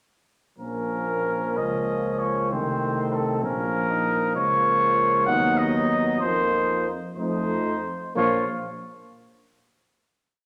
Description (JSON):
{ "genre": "classical, brass quintet", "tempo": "63 BPM (dotted quarters)", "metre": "6/8", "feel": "uneven beats", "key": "Bb minor", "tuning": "A4 = 440 Hz", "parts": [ { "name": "mellow cornet", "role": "melody", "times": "0.6-8.4 s", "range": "A4 to F#5", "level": "-27 LUFS", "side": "equal", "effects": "none" }, { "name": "warm flugelhorn", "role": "second line", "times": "0.6-8.4 s", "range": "C4 to F4", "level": "-35 LUFS", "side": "equal", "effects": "none" }, { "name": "mellow French horn", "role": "accompaniment", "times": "0.6-8.4 s", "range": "A3 to B3", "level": "-32 LUFS", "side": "equal", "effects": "none" }, { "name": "warm trombone", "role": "accompaniment", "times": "0.6-8.5 s", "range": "Eb3 to F#3", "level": "-34 LUFS", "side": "equal", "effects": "none" }, { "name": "mellow tuba", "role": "bass", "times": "0.6-8.4 s", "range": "Bb1 to F2", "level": "-32 LUFS", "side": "equal", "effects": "none" } ], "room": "wet recital hall reverb, RT60 1.5 s", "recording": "none", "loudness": "-24 LUFS", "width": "mono", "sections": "0.6-8.2 A section; 8.2-10.1 final chord", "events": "none", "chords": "0.6 Bbm; 2.5 Adim/C; 3.4 Bbm; 4.4 Bbm/Db; 5.3 B/D#; 6.2 F7sus4; 7.2 F7; 8.2 Bb5" }